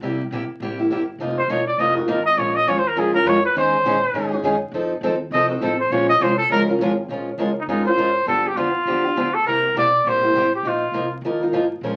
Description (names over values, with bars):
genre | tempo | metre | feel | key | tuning
acoustic string swing (jazz manouche) | 203 BPM | 4/4 | swing 58% on 8ths | Bb minor | A4 = 440 Hz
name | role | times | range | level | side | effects
picked steel-string acoustic guitar | accompaniment | 0.0-12.0 s | C3 to Bb4 | -24 LUFS | equal | none
upright bass | bass | 0.0-12.0 s | E1 to Bb2 | -37 LUFS | equal | none
warm trumpet | melody | 1.4-11.1 s | Eb4 to Eb5 | -21 LUFS | equal | none
picked steel-string acoustic guitar | accompaniment | 2.4-6.9, 11.8-12.0 s | Eb3 to Bb4 | -31 LUFS | equal | none
room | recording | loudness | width
wet studio ambience, RT60 0.5 s | very old 78 rpm record, vinyl crackle | -20 LUFS | mono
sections
0.0-7.1 A section; 7.1-12.0 B section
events
trumpet solo 0.0-7.1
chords
0.0 C7; 1.2 F7sus4; 2.4 Bbm7; 3.6 Eb7sus4; 4.7 F7; 5.9 Bbm7; 7.1 Bbm9; 8.3 G7; 9.5 C7; 10.6 F7sus4